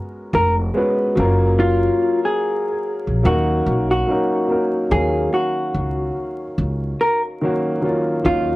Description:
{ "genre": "hip hop", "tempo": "72 BPM", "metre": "4/4", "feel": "swing 57% on 16ths", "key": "Eb minor", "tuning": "A4 = 440 Hz", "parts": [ { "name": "warm upright piano", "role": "accompaniment", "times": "0.0-8.6 s", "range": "Eb3 to F5", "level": "-21 LUFS", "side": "equal", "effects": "cassette tape, low-pass filter" }, { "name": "vintage hollow-body jazz guitar", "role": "melody", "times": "0.3-8.6 s", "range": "F4 to Bb4", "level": "-20 LUFS", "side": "left 1 dB", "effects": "low-pass filter, cassette tape" }, { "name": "upright bass", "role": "bass", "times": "0.3-8.6 s", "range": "F1 to Eb2", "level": "-20 LUFS", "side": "equal", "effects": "none" } ], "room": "moderate booth ambience, RT60 0.2 s", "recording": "home recording on cassette, vinyl crackle", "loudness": "-17 LUFS", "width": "side -19 dB against mid", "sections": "0.0-4.9 A section; 4.9-8.6 B section", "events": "none", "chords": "0.0 Abm11; 1.2 Gbmaj7; 3.2 Ebm7; 4.9 Ebm9", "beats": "0.74 | 1.58 2.41 3.24 4.08 | 4.91 5.74 6.58 7.41 | 8.24" }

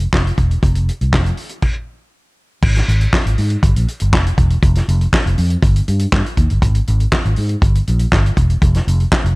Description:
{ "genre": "disco", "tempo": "120 BPM", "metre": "4/4", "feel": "straight", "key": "unclear", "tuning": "A4 = 441 Hz", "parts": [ { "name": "fingered electric bass", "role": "bass", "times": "0.0-9.4 s", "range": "E1 to Ab2", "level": "-14 LUFS", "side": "equal", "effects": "none" }, { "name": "warm soul drum kit", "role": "drums", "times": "0.1-9.4 s", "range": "crash cymbal, handclaps, hi-hat, kick drum, snare drum", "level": "-16 LUFS", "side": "equal", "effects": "none" } ], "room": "little or no reverb", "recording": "dark, warm production", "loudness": "-13 LUFS", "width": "side -25 dB against mid", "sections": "0.0-2.6 A section; 2.6-9.4 B section", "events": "stop 1.6-2.6", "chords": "none", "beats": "0.13 | 0.63 1.13 1.63 2.13 | 2.63 3.13 3.63 4.13 | 4.63 5.13 5.62 6.12 | 6.62 7.12 7.62 8.12 | 8.62 9.12" }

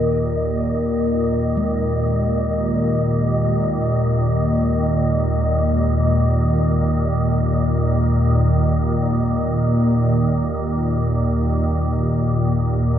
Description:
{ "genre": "dark ambient drone", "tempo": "free time", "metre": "none", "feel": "none", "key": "unclear", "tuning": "A4 = 440 Hz", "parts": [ { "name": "bronze singing bowl", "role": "arpeggios", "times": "0.0-9.1 s", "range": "Ab3 to Bb4", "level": "-28 LUFS", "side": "left 2 dB", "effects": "diffuse ambient delay" }, { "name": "organ-like drone", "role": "drone", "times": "0.0-13.0 s", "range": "Eb2 to Bb2", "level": "-17 LUFS", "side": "equal", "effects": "ensemble chorus, built-in reverb" }, { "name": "wind-like tuned noise texture", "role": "texture", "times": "0.0-13.0 s", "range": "Eb5", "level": "-27 LUFS", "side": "equal", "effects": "built-in reverb" } ], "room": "wet huge ambient reverb, RT60 7.9 s", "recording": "dark, warm production", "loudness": "-17 LUFS", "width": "side -10 dB against mid", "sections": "0.0-13.0 A section", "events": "fade-out on synth texture 0.0-13.0; fade-out on singing bowl 0.0-13.0", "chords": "0.0 Eb5", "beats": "free time" }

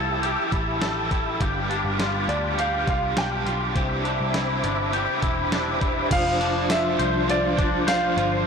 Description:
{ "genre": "dream pop", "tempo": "102 BPM", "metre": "4/4", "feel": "straight", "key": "unclear", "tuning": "A4 = 440 Hz", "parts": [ { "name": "overdriven semi-hollow guitar", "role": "accompaniment", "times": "0.0-8.5 s", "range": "G2 to C5", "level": "-29 LUFS", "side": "right 5 dB", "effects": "tremolo, wide subtle chorus" }, { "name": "mellow tonewheel organ", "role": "sustained chords", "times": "0.0-8.5 s", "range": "F3 to E6", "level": "-28 LUFS", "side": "left 1 dB", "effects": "chorus vibrato, fast rotary speaker" }, { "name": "twangy electric guitar", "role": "arpeggios", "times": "0.0-8.5 s", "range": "G2 to C5", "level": "-27 LUFS", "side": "left 5 dB", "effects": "ensemble chorus, ping-pong delay" }, { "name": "vintage muted picked electric bass", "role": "bass", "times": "0.0-8.4 s", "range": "E1 to D2", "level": "-30 LUFS", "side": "equal", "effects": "tube saturation" }, { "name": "detuned 8-bit digital drum machine", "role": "drums", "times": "0.2-8.3 s", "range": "crash cymbal, hi-hat, kick drum, snare drum, tambourine", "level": "-28 LUFS", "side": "equal", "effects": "none" }, { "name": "felt-muted upright piano", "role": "melody", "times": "2.3-8.3 s", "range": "D5 to G5", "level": "-26 LUFS", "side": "right 2 dB", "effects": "ping-pong delay" } ], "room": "moderate lush hall reverb, RT60 2.6 s", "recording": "blown-out, overdriven recording, overdrive", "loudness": "-21 LUFS", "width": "side -6 dB against mid", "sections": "0.0-6.1 A section; 6.1-8.5 B section", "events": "none", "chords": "0.0 Fmaj9; 1.4 G7; 3.8 Cmaj9; 6.1 Dm7/F", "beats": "0.23 0.82 | 1.41 1.99 2.58 3.17 | 3.76 4.35 4.93 5.52 | 6.11 6.70 7.29 7.88 | 8.46" }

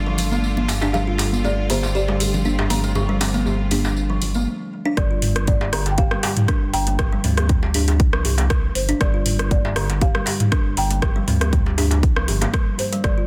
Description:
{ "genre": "afro house", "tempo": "119 BPM", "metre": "4/4", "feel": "swing 53% on 16ths", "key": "unclear", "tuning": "A4 = 440 Hz", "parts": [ { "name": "folk marimba with soft mallets", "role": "melody", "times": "0.0-13.3 s", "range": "C5 to G5", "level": "-31 LUFS", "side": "equal", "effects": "delay" }, { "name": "bright symphonic string section", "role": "sustained chords", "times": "0.0-4.4 s", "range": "D3 to F4", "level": "-32 LUFS", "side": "equal", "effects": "sidechain pumping" }, { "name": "round analog bass", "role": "bass", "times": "0.0-13.3 s", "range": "G1 to D2", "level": "-25 LUFS", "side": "equal", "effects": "tube saturation, sidechain pumping" }, { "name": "kalimba", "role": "arpeggios", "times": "0.1-13.3 s", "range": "D3 to G4", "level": "-28 LUFS", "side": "equal", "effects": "sidechain pumping, delay" }, { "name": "afro-pop drum kit", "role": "drums", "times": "0.2-13.1 s", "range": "hi-hat, rim click, toms", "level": "-27 LUFS", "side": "equal", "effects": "none" }, { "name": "congas", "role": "percussion", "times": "0.2-4.4 s", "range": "none", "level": "-30 LUFS", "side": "equal", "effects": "none" }, { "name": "tambourine", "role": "percussion", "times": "0.2-4.4 s", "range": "none", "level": "-35 LUFS", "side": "equal", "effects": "none" }, { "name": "djembe", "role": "percussion", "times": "0.7-13.1 s", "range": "none", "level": "-30 LUFS", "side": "equal", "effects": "none" }, { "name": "electronic kick drum", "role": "drums", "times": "5.0-13.1 s", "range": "none", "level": "-22 LUFS", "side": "equal", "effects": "none" } ], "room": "light reverb, small room ambience", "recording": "dense, heavily limited modern master", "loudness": "-20 LUFS", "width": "mono", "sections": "0.0-5.0 A section; 5.0-13.3 B section", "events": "break 4.5-5.0; drop 5.0-13.3", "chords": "0.0 Dm/G; 5.0 G5", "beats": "0.44 | 0.94 1.44 1.95 2.45 | 2.96 3.46 3.96 4.47 | 4.97 5.48 5.98 6.49 | 6.99 7.50 8.00 8.50 | 9.01 9.51 10.02 10.52 | 11.02 11.53 12.03 12.54 | 13.04" }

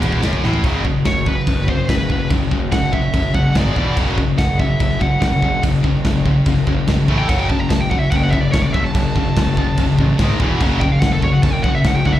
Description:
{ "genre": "heavy metal", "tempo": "145 BPM", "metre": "4/4", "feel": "straight", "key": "F# minor", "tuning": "A4 = 438 Hz", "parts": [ { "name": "high-gain distorted guitar", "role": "riff", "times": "0.0-12.2 s", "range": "E2 to A3", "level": "-18 LUFS", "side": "left 1 dB", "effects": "distortion, slapback echo" }, { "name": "fuzz picked electric bass", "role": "bass", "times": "0.0-12.2 s", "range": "E1 to A1", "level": "-20 LUFS", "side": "equal", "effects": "overdrive" }, { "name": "modern studio drum kit", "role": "drums", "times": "0.0-12.2 s", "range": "crash cymbal, kick drum, ride cymbal, snare drum, toms", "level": "-20 LUFS", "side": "equal", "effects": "none" }, { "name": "high-gain lead guitar", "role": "melody", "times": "1.1-12.2 s", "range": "A4 to A#5", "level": "-23 LUFS", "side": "equal", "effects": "distortion, slapback echo, digital delay" } ], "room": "little or no reverb", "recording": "live gig heard through the venue's PA, club reverb", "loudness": "-14 LUFS", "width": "side -13 dB against mid", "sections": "0.6-12.2 A section", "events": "drum fill 0.4; lead electric guitar solo 0.6-12.2", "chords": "0.0 F#m; 0.6 F#5; 3.6 G#5; 3.8 E5; 4.0 F#5; 7.1 A5; 7.3 F#m; 10.2 G#5; 10.4 E5; 10.6 F#5", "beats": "0.23 | 0.65 1.06 1.48 1.89 | 2.31 2.73 3.14 3.56 | 3.97 4.39 4.80 5.22 | 5.63 6.05 6.46 6.88 | 7.29 7.71 8.12 8.54 | 8.95 9.37 9.78 10.20 | 10.61 11.03 11.44 11.85" }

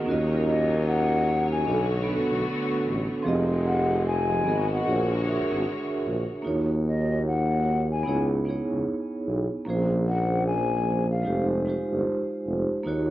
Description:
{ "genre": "hip hop", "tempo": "75 BPM", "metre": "4/4", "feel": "swing 61% on 16ths", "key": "Eb dorian from 6.5 s", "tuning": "A4 = 439 Hz", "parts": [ { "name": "vibraphone with soft mallets", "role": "accompaniment", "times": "0.0-13.1 s", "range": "F3 to Fb5", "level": "-27 LUFS", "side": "right 2 dB", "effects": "cassette tape, low-pass filter" }, { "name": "clear studio string section", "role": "sustained chords", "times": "0.0-6.5 s", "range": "D3 to Db5", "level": "-34 LUFS", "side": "left 3 dB", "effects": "low-pass filter" }, { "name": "warm tuba", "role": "bass", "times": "0.1-13.1 s", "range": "F1 to Eb2", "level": "-26 LUFS", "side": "equal", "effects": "none" }, { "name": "mellow hollow silver concert flute", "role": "melody", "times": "0.5-11.5 s", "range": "Eb5 to Ab5", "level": "-30 LUFS", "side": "left 4 dB", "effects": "low-pass filter, analog delay" } ], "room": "moderate studio reverb, RT60 0.5 s", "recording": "cassette tape", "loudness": "-23 LUFS", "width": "side -14 dB against mid", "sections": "0.0-6.5 A section; 6.5-13.1 B section", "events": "none", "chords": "0.1 Ebm9; 1.7 Bm9; 3.3 Fm9; 4.5 Abm9; 4.9 Bb7alt; 6.5 Ebm9; 8.1 Dbm9; 9.7 Bbm9; 11.3 Fm9", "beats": "| 0.07 0.86 1.67 2.46 | 3.27 4.07 4.87 5.67 | 6.46 7.26 8.06 8.87 | 9.66 10.46 11.27 12.06 | 12.87" }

